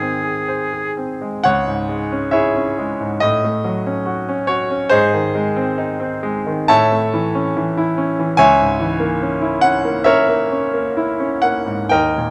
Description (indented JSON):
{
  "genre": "classical, romantic duo for oboe and grand piano",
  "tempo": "69 BPM",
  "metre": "4/4",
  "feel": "uneven beats, rubato",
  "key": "C# minor",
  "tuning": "A4 = 440 Hz",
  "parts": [
    { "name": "clear oboe", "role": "melody", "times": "0.0-0.9 s", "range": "G#4", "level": "-25 LUFS", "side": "equal", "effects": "none" },
    { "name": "bright grand piano", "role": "accompaniment", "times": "0.0-12.3 s", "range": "C#2 to A5", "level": "-18 LUFS", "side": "equal", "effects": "none" }
  ],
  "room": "moderate recital hall reverb, RT60 1.8 s",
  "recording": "close, detailed microphones",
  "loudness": "-18 LUFS",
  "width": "mono",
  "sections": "0.0-1.5 A section; 1.5-12.3 B section",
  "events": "none",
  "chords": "0.0 G#; 1.5 C#m; 3.2 F#m/A; 4.9 G#; 6.7 A; 8.4 A#m7b5/C#"
}